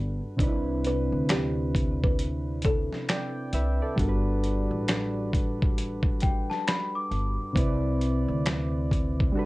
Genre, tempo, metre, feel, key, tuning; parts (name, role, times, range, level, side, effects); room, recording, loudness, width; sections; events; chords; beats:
lo-fi hip hop; 67 BPM; 4/4; swing 62% on 16ths; A4 = 440 Hz
kalimba; melody; 0.0-2.9 s; G4 to D5; -34 LUFS; left 1 dB
soft electric-piano-like synth keys; accompaniment; 0.0-9.5 s; C3 to G5; -30 LUFS; equal; chorus, cassette tape
upright bass; bass; 0.0-9.3 s; G1 to D2; -30 LUFS; equal
dusty soul sampler-style drum kit; drums; 0.4-9.4 s; finger snaps, hi-hat, kick drum, snare drum; -26 LUFS; equal; vintage 12-bit sampler grit
large celesta; second line; 6.2-7.5 s; G5 to D6; -33 LUFS; left 3 dB; analog delay
light reverb; cassette tape; -24 LUFS; side -19 dB against mid
0.0-9.5 A section
0.4 Cmaj9; 4.0 Gmaj9; 7.6 Cmaj9
| 0.40 1.29 2.19 3.08 | 3.98 4.88 5.77 6.67 | 7.56 8.46 9.35